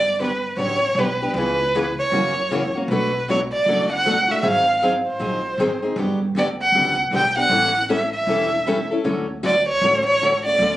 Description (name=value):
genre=acoustic string swing (jazz manouche)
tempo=156 BPM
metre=4/4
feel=swing 61% on 8ths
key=unclear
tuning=A4 = 442 Hz
part: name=rich violin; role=melody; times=0.0-10.8 s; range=B4 to G5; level=-19 LUFS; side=right 1 dB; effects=none
part: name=upright bass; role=bass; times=0.0-10.8 s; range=E1 to F#2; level=-29 LUFS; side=right 1 dB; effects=none
part: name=picked steel-string acoustic guitar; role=accompaniment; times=0.2-10.8 s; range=B2 to A4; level=-23 LUFS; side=left 2 dB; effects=none
room=moderate club reverb, RT60 0.6 s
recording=recorded on a phone in the room, club reverb, compression, nothing above 11.0 kHz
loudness=-17 LUFS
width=side -14 dB against mid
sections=0.0-10.8 A section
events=none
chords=0.0 Gmaj7; 1.3 C#m7; 2.1 F#7; 2.9 Bm7; 4.4 G#13; 6.0 Gmaj7; 7.5 A7; 9.0 Dmaj7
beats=0.19 0.57 0.96 | 1.34 1.73 2.12 2.50 | 2.89 3.27 3.66 4.05 | 4.43 4.82 5.20 5.59 | 5.97 6.36 6.74 7.13 | 7.51 7.89 8.28 8.66 | 9.05 9.43 9.82 10.20 | 10.59